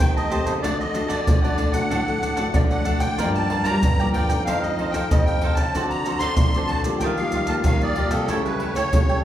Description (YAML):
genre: samba and choro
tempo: 94 BPM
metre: 4/4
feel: straight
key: unclear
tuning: A4 = 440 Hz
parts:
  - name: musette accordion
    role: melody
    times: 0.0-9.2 s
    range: A4 to C6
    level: -26 LUFS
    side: equal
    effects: none
  - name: nylon-string guitar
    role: accompaniment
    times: 0.0-9.2 s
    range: G2 to A4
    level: -28 LUFS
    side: left 2 dB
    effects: none
  - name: nylon-string guitar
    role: bass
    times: 0.0-9.2 s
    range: F2 to G3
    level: -28 LUFS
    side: equal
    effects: none
  - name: maracas, surdo and pandeiro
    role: percussion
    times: 0.0-9.2 s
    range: none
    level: -22 LUFS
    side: equal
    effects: none
  - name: cavaquinho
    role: accompaniment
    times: 0.2-9.2 s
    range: D4 to A5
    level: -28 LUFS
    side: right 3 dB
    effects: none
room: wet recital hall reverb, RT60 1.8 s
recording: recorded in a church or concert hall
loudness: -19 LUFS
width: side -12 dB against mid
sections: 0.0-9.2 A section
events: none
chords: 0.0 Am7b5/Eb; 0.6 D; 3.2 Gm7; 4.5 F7; 5.7 D7; 7.0 Ebadd9; 8.3 A7/C#